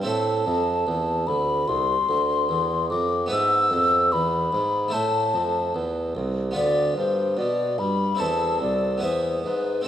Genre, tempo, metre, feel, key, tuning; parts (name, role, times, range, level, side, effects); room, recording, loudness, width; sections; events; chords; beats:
classical, baroque-style sonata movement with continuo; 74 BPM; 4/4; straight; A minor; A4 = 440 Hz
harpsichord; accompaniment; 0.0-9.9 s; C2 to C5; -29 LUFS; right 1 dB
mellow bassoon; bass; 0.0-9.9 s; C2 to B2; -26 LUFS; right 2 dB
mellow baroque flute; melody; 0.1-9.9 s; B4 to E6; -23 LUFS; left 3 dB
moderate recital hall reverb, RT60 1.6 s; -21 LUFS; side -10 dB against mid
0.0-9.9 A section
0.0 Am; 3.3 E; 4.9 Am; 6.6 Bdim/D; 8.2 Am/E; 9.0 E
| 0.06 0.87 1.68 2.50 | 3.31 4.12 4.93 5.75 | 6.56 7.38 8.20 9.03 | 9.86